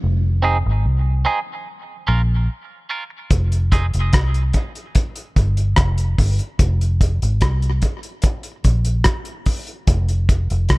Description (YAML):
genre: dub reggae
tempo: 73 BPM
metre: 4/4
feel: straight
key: F minor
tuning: A4 = 440 Hz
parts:
  - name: vintage muted fingered electric bass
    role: bass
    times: 0.0-10.8 s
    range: F1 to C2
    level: -17 LUFS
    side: equal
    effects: none
  - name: clean electric guitar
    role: accompaniment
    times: 0.4-3.9 s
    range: C4 to Bb4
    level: -24 LUFS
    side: right 4 dB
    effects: high-pass filter, tape echo
  - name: cloth-damped thuddy drum kit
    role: drums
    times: 3.3-10.8 s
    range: hi-hat, kick drum, rim click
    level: -18 LUFS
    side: equal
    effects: none
room: small room ambience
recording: dark, warm production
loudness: -16 LUFS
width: side -23 dB against mid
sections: 0.0-10.8 A section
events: break 0.0-3.3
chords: 0.0 Fm7; 1.7 Bbm; 3.3 F5; 5.0 Fsus2; 6.6 Fm; 8.2 N.C.; 9.9 F5